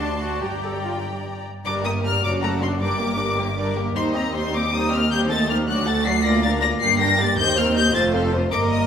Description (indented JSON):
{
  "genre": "quick classical-period movement for string orchestra",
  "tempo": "104 BPM (dotted quarters)",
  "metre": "6/8",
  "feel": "rubato",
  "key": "G minor",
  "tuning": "A4 = 441 Hz",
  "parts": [
    { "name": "clear studio violin section", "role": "melody", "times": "0.0-8.9 s", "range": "Bb5 to C7", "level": "-23 LUFS", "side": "left 4 dB", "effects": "none" },
    { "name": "clear studio violin section", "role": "second line", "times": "0.0-8.9 s", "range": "Eb4 to A5", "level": "-27 LUFS", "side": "left 3 dB", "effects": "none" },
    { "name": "rich studio viola section", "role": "accompaniment", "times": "0.0-8.9 s", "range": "F#3 to Bb4", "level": "-26 LUFS", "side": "right 2 dB", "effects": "none" },
    { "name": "clear studio cello section", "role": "bass", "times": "0.0-8.9 s", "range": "D2 to G2", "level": "-27 LUFS", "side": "right 2 dB", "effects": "none" },
    { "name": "clear studio double bass section", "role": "bass", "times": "0.0-8.9 s", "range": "F1 to Eb2", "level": "-26 LUFS", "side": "right 1 dB", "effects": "none" }
  ],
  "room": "wet recital hall reverb, RT60 1.4 s",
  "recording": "recorded in a church or concert hall",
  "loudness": "-19 LUFS",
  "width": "side -8 dB against mid",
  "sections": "0.0-1.7 A section; 1.7-8.9 B section",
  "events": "none",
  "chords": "0.4 Gm; 2.2 D/F#; 2.8 Gm; 4.0 Cm/Eb; 5.1 Am7b5/Eb; 5.7 D; 6.2 Bb/D; 6.8 Gm; 7.4 Cm7/Eb; 7.9 F"
}